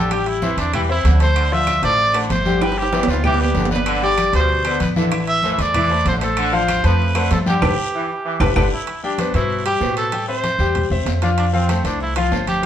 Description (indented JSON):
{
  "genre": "latin, salsa",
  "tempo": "192 BPM",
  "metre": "4/4",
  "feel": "straight",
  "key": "C major",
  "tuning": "A4 = 441 Hz",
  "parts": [
    { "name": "clear trumpet", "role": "melody", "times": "0.0-12.7 s", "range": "C4 to E5", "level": "-21 LUFS", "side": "right 2 dB", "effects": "none" },
    { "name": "brilliant trombone section", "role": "second line", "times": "0.0-8.7 s", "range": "D3 to F3", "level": "-27 LUFS", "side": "equal", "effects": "none" },
    { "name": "bright concert grand piano", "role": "accompaniment", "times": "0.0-12.7 s", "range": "B2 to G5", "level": "-22 LUFS", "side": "left 4 dB", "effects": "none" },
    { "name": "upright bass", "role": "bass", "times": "0.0-12.7 s", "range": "G1 to A2", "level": "-21 LUFS", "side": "right 1 dB", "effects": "none" },
    { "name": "claves", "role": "percussion", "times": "0.1-8.6 s", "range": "none", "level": "-32 LUFS", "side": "right 1 dB", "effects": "none" },
    { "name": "congas", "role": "percussion", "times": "0.1-12.7 s", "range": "none", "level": "-25 LUFS", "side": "equal", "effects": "none" },
    { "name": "guiro", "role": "percussion", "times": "0.1-12.7 s", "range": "none", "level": "-35 LUFS", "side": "left 4 dB", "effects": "none" },
    { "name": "timbales", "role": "percussion", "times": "0.1-12.7 s", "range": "none", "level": "-27 LUFS", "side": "right 4 dB", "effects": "none" }
  ],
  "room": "moderate stone room reverb, RT60 1.0 s",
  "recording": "band playing live in one room",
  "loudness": "-16 LUFS",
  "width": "side -10 dB against mid",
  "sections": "0.0-8.9 A section; 8.9-12.7 B section",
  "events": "drum fill 2.6-3.9, 7.9-8.9; band accent 7.6-8.9",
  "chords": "0.1 Am7; 1.4 Dm7; 2.6 G; 5.1 Am; 6.4 Dm7/A; 7.6 Gadd9; 8.9 Cmaj7; 10.1 Am7; 11.4 F",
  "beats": "| 0.11 0.42 0.73 1.05 | 1.36 1.68 1.99 2.30 | 2.61 2.93 3.24 3.55 | 3.87 4.18 4.49 4.80 | 5.12 5.43 5.74 6.06 | 6.37 6.68 7.00 7.31 | 7.62 7.93 8.25 8.56 | 8.87 9.19 9.50 9.81 | 10.12 10.44 10.75 11.06 | 11.38 11.69 12.01 12.32 | 12.63"
}